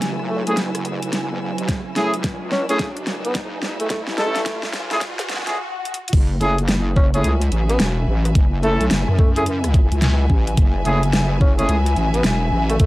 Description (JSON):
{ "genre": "glitch hop", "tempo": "108 BPM", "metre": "4/4", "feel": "swing 63% on 16ths", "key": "F# minor", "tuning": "A4 = 441 Hz", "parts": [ { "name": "warbly tape-like pad", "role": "sustained chords", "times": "0.0-12.9 s", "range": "C#3 to E4", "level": "-32 LUFS", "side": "right 1 dB", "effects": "chorus, built-in reverb, phaser, sidechain pumping" }, { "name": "wobble bass", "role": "bass", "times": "0.0-12.9 s", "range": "E1 to F#2", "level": "-21 LUFS", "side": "equal", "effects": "chorus, high-pass filter" }, { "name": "dubstep drum kit", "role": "drums", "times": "0.0-12.9 s", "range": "crash cymbal, hi-hat, rim click, snare drum", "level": "-24 LUFS", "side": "equal", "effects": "overdrive, small room ambience" }, { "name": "riser and swell", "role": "sound effects", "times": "0.8-6.1 s", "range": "none", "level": "-32 LUFS", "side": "left 1 dB", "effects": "none" }, { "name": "bright studio string section", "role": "texture", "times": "0.0-12.9 s", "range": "F#4 to E6", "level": "-30 LUFS", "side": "left 1 dB", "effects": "sidechain pumping" }, { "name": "breathy tenor saxophone", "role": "melody", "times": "0.3-12.9 s", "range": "A3 to C#4", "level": "-25 LUFS", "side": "equal", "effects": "tape echo" }, { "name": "warm horn section", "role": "stabs", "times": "0.5-11.8 s", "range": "A3 to A4", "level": "-23 LUFS", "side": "equal", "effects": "sidechain pumping, low-pass filter, tape echo" }, { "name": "electronic kick drum", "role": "drums", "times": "1.7-12.9 s", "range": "none", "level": "-16 LUFS", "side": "equal", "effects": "overdrive, small room ambience" } ], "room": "little or no reverb", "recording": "dry, gritty hardware recording, transformer saturation, high-pass filter", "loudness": "-17 LUFS", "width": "side -18 dB against mid", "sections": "0.0-6.1 A section; 6.1-12.9 B section", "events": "build-up 0.0-6.1; drum fill 0.0-5.6, 5.9; filter sweep 0.0-6.1; riser 0.8-5.6; swell 5.0-6.1; break 5.6-6.1; drop 6.1-12.9", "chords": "0.0 F#m7" }